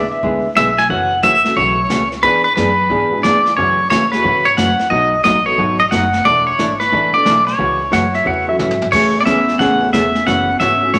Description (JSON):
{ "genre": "country, western swing", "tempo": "179 BPM", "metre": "4/4", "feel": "swing 64% on 8ths", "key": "A major", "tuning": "A4 = 440 Hz", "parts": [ { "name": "pedal steel guitar", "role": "melody", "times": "0.0-11.0 s", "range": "B4 to G#5", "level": "-16 LUFS", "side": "equal", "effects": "none" }, { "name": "clean lap steel guitar", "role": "second line", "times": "0.0-0.5, 7.9-8.9 s", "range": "E5 to F#5", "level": "-22 LUFS", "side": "equal", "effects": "none" }, { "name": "dark upright piano", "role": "accompaniment", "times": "0.0-10.9 s", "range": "F#3 to B4", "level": "-28 LUFS", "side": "equal", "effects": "none" }, { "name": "upright bass", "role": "bass", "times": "0.0-11.0 s", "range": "E1 to A2", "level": "-28 LUFS", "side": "equal", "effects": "none" }, { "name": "hollow-body jazz guitar", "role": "accompaniment", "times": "0.2-11.0 s", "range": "B2 to A4", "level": "-23 LUFS", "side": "equal", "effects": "none" }, { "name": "jazz brush drum kit", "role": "drums", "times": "0.2-11.0 s", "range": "brushed snare drum, crash cymbal, hi-hat, kick drum, snare drum, toms", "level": "-25 LUFS", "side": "equal", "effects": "none" }, { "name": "Celtic harp", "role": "second line", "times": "8.9-11.0 s", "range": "A3 to C#4", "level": "-21 LUFS", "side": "equal", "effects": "none" } ], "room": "wet large studio reverb, RT60 1.3 s", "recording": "vinyl crackle", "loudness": "-14 LUFS", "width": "mono", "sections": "0.0-8.9 A section; 8.9-11.0 B section", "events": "drum fill 8.6-8.9", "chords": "0.0 E7; 0.9 F#m7; 2.2 E7; 3.6 F#m11; 4.9 B7; 6.3 E7sus4; 7.6 A6; 8.9 Amaj7; 10.3 F#m7" }